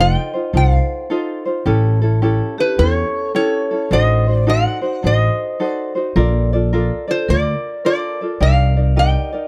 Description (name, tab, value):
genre	Hawaiian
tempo	107 BPM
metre	4/4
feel	swing 64% on 8ths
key	unclear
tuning	A4 = 440 Hz
part	metal-body resonator slide guitar	melody	0.0-9.5 s	B4 to G5	-22 LUFS	equal	none
part	vibraphone with medium hard mallets	second line	0.0-9.5 s	G4 to Eb5	-28 LUFS	equal	none
part	tenor ukulele	accompaniment	0.0-9.5 s	C#4 to D5	-24 LUFS	equal	none
part	upright bass	bass	0.0-9.1 s	F1 to E2	-18 LUFS	equal	none
room	studio reverb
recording	dry, close 1970s-style studio recording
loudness	-17 LUFS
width	mono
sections	0.0-9.5 A section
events	none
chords	0.0 F7; 1.7 A7; 3.9 D7b9/A; 6.2 Bbmaj7; 8.4 Cm9